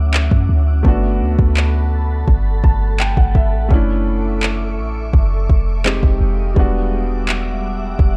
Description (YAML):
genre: contemporary R&B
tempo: 84 BPM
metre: 4/4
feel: straight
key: unclear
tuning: A4 = 440 Hz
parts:
  - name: warm concert grand piano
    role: accompaniment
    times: 0.0-8.2 s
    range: F#3 to A5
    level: -26 LUFS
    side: equal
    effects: none
  - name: glassy FM pad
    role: sustained chords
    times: 0.0-8.2 s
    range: G3 to D6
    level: -31 LUFS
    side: equal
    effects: ensemble chorus, built-in reverb
  - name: warm 808-style bass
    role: bass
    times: 0.0-8.2 s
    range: E1 to F#2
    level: -20 LUFS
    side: equal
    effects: none
  - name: smooth R&B drum kit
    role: drums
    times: 0.1-8.2 s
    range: handclaps, kick drum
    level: -17 LUFS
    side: equal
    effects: overdrive
room: little or no reverb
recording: dark, warm production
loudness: -16 LUFS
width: mono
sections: 0.0-8.2 A section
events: break 0.0-8.2; grand piano fill 2.3-3.7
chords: 0.0 Dmaj9; 0.8 Gmaj9; 3.7 Dmaj9; 5.8 Fm9; 6.6 Em9